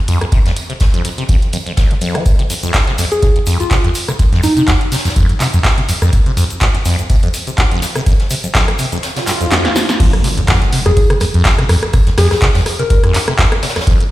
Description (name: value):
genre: acid house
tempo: 124 BPM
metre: 4/4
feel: swing 55% on 16ths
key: F minor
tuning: A4 = 439 Hz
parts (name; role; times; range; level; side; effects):
- liquid acid bass; riff; 0.1-14.0 s; Eb2 to F3; -17 LUFS; equal; phaser, cassette tape, sidechain pumping
- electro analog drum machine; drums; 0.1-14.1 s; crash cymbal, handclaps, hi-hat, rim click, snare drum; -18 LUFS; equal; studio reverb
- jazz brush drum kit; drums; 0.1-14.0 s; hi-hat, snare drum, tambourine; -27 LUFS; right 1 dB; high-pass filter on hats, studio reverb, high-pass filter on snare, high-pass filter on perc, high-pass filter on room
- electronic kick drum; drums; 0.3-14.0 s; none; -13 LUFS; equal; studio reverb
- egg shaker; percussion; 2.3-10.0 s; none; -32 LUFS; left 4 dB; none
- soft struck synth lead; melody; 3.1-4.6, 10.9-13.0 s; Eb4 to Bb4; -19 LUFS; left 1 dB; chorus, dub echo
- swell and impact; sound effects; 9.2-11.9 s; none; -20 LUFS; equal; none
room: light reverb, small room ambience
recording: played on a big sound system in a bare room, stone room reverb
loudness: -11 LUFS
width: side -16 dB against mid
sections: 0.0-10.0 A section; 10.0-14.1 B section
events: kick drops out 9.0-10.0; swell 9.2-10.0; drum fill 9.5-10.0; drop 10.0-14.1; impact 10.0-11.9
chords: 0.0 F5